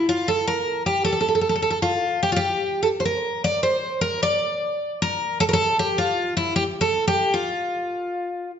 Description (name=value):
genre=fado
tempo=77 BPM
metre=2/4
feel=rubato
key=F major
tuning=A4 = 444 Hz
part: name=picked twelve-string acoustic guitar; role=solo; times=0.0-8.5 s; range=E4 to D5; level=-20 LUFS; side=equal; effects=none
room=wet recital hall reverb, RT60 1.4 s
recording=nothing above 7.7 kHz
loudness=-20 LUFS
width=side -8 dB against mid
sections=0.0-8.6 A section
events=none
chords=none